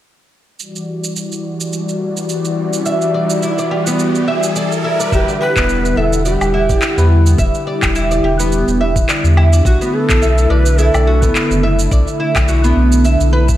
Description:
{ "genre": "organic downtempo", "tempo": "106 BPM", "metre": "4/4", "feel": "swing 56% on 16ths", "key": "E minor", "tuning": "A4 = 440 Hz", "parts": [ { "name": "warm analog pad", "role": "sustained chords", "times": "0.6-13.6 s", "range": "D3 to F#5", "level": "-19 LUFS", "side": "left 1 dB", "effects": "wide subtle chorus, sidechain pumping" }, { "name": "electronic shaker, handclaps and woodblock", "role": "drums", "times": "0.6-13.6 s", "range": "none", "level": "-22 LUFS", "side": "right 1 dB", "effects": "none" }, { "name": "riser", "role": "sound effects", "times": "1.7-5.1 s", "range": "none", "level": "-26 LUFS", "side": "right 1 dB", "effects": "none" }, { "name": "oud", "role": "arpeggios", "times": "2.9-13.5 s", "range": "B3 to E5", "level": "-18 LUFS", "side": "right 2 dB", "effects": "vintage 12-bit sampler grit, diffuse ambient delay" }, { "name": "breathy mellow Native American-style cedar flute", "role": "melody", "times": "5.1-11.6 s", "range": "F#4 to B4", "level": "-20 LUFS", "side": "equal", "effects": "analog delay" }, { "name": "warm sub bass", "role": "bass", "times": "5.1-13.6 s", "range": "E1 to E2", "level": "-13 LUFS", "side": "equal", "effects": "sidechain pumping" }, { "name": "electronic kick drum", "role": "drums", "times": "5.1-13.6 s", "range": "none", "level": "-17 LUFS", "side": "equal", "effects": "none" } ], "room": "moderate plate reverb, RT60 2.5 s", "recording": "dreamy mix soaked in reverb", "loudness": "-12 LUFS", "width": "side -13 dB against mid", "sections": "0.6-5.1 A section; 5.1-13.6 B section", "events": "riser 1.7-5.1", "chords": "0.6 Em9; 9.7 Bm7" }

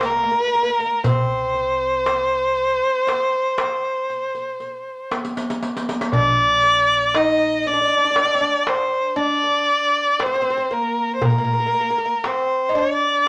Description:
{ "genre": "Turkish makam ensemble", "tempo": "118 BPM (eighths)", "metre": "10/8", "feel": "straight", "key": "unclear", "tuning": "A4 = 440 Hz", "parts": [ { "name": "dark violin", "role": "melody", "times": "0.0-13.3 s", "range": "Bb4 to Eb5", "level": "-21 LUFS", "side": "equal", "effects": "none" }, { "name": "oud", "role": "second line", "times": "0.0-13.3 s", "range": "Bb3 to Eb4", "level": "-28 LUFS", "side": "equal", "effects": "none" }, { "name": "upright bass", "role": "bass", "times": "0.0-11.7 s", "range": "Bb1 to Bb2", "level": "-33 LUFS", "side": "equal", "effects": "none" }, { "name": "darbuka", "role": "percussion", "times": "0.0-12.9 s", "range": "none", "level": "-26 LUFS", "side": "equal", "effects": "none" }, { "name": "riq", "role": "percussion", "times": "0.0-6.1 s", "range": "none", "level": "-30 LUFS", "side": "equal", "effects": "none" } ], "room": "moderate small room reverb, RT60 0.6 s", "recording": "none", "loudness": "-20 LUFS", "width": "mono", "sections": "0.0-6.1 A section; 6.1-13.3 B section", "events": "drum fill 5.1-6.1", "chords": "none" }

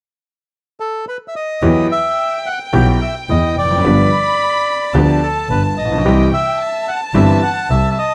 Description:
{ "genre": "tango", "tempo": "109 BPM", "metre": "4/4", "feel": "rubato", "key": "unclear", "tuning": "A4 = 440 Hz", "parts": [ { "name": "bandoneon", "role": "melody", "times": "0.8-8.1 s", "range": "A4 to G5", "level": "-21 LUFS", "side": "equal", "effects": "none" }, { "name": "warm chamber violin section", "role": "second line", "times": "1.6-8.1 s", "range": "G5 to B5", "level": "-25 LUFS", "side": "equal", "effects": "none" }, { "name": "bright concert grand piano", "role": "accompaniment", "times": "1.6-7.9 s", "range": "G1 to G4", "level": "-19 LUFS", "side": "equal", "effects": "none" }, { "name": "clear double bass", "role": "bass", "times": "1.6-7.9 s", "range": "F1 to E2", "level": "-19 LUFS", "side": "equal", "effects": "none" } ], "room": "studio reverb", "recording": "dry, close 1970s-style studio recording", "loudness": "-15 LUFS", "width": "mono", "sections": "0.0-1.6 A section; 1.6-8.1 B section", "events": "none", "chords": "0.0 N.C.; 1.6 Emadd9; 3.8 G7; 6.0 C" }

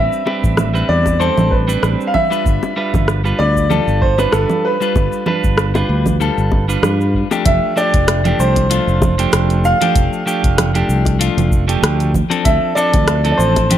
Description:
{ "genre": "sunset chillout", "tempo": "96 BPM", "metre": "4/4", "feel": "swing 55% on 16ths", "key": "unclear", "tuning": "A4 = 443 Hz", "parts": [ { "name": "warm concert grand piano", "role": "melody", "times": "0.0-13.8 s", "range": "A4 to F5", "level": "-18 LUFS", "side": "right 1 dB", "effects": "vintage 12-bit sampler grit, digital delay" }, { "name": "clean electric guitar", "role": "accompaniment", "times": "0.0-13.8 s", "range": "F3 to B4", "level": "-19 LUFS", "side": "moving between left 7 dB and right 4 dB", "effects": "auto-pan, ping-pong delay" }, { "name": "fingered electric bass", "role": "bass", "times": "0.0-13.8 s", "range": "F1 to G2", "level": "-16 LUFS", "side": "equal", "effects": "tube saturation" }, { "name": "deep house drum kit", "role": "drums", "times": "0.1-13.8 s", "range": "congas, hi-hat, rim click, shaker", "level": "-20 LUFS", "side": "right 2 dB", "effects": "small room ambience" }, { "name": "bongos", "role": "percussion", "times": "0.3-13.7 s", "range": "none", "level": "-24 LUFS", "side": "left 4 dB", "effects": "none" }, { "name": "electronic kick drum", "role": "drums", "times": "0.4-13.7 s", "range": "none", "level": "-18 LUFS", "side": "equal", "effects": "small room ambience" } ], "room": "light reverb, digital ambience", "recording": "none", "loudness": "-13 LUFS", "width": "side -11 dB against mid", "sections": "0.0-7.5 A section; 7.5-13.8 B section", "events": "none", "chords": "0.0 Am11; 2.5 G7; 7.5 F69; 12.1 Dm7" }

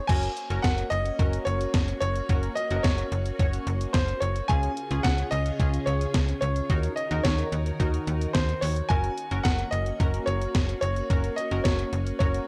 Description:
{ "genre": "synth-pop", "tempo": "109 BPM", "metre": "4/4", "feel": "straight", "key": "unclear", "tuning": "A4 = 439 Hz", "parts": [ { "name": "clear baby grand piano", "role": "melody", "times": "0.0-12.5 s", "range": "C5 to Ab5", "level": "-33 LUFS", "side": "equal", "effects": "analog delay" }, { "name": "funky polysynth comp", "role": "accompaniment", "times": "0.1-12.5 s", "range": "Db4 to Db5", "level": "-36 LUFS", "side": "equal", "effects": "chorus" }, { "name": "soft string machine", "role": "sustained chords", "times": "0.4-12.5 s", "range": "Db3 to Bb4", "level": "-39 LUFS", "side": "equal", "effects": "ensemble chorus" }, { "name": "slap-like FM bass", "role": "bass", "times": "0.1-12.4 s", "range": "Gb1 to Eb2", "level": "-30 LUFS", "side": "equal", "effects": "tube saturation" }, { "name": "gated 80s digital drum machine", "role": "drums", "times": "0.1-12.5 s", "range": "crash cymbal, hi-hat, kick drum, snare drum", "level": "-29 LUFS", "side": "equal", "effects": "gated reverb, gated reverb snare" } ], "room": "little or no reverb", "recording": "dry, gritty hardware recording, transformer saturation, cassette tape", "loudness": "-26 LUFS", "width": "mono", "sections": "0.1-12.5 A section", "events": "none", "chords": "0.1 Gb; 4.5 Db; 6.7 Ebm; 8.9 Gb" }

